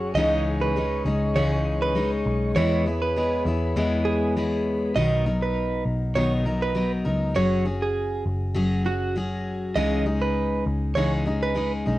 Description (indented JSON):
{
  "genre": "acoustic pop",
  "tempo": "100 BPM",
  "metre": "4/4",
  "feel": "swing 55% on 16ths",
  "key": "B major",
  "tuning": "A4 = 440 Hz",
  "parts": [
    { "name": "picked steel-string acoustic guitar", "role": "accompaniment", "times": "0.0-12.0 s", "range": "B2 to A#4", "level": "-25 LUFS", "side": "left 2 dB", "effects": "cassette tape" },
    { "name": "mellow tonewheel organ", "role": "sustained chords", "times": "0.0-4.9 s", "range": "G#4 to C#6", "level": "-32 LUFS", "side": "equal", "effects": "slow rotary speaker, cassette tape" },
    { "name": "vintage muted picked electric bass", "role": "bass", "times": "0.0-12.0 s", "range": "F#1 to E2", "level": "-27 LUFS", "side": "equal", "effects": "tube saturation" },
    { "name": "direct-recorded clean electric guitar", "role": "arpeggios", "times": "0.1-11.7 s", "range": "F#4 to D#5", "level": "-26 LUFS", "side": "right 4 dB", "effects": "cassette tape" }
  ],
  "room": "moderate studio reverb, RT60 0.6 s",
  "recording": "home recording on cassette",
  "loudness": "-22 LUFS",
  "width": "side -16 dB against mid",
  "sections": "0.0-5.0 A section; 5.0-12.0 B section",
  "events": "none",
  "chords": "0.2 C#madd9; 2.6 E; 5.0 Bmaj7; 7.4 F#sus2; 9.8 C#madd9"
}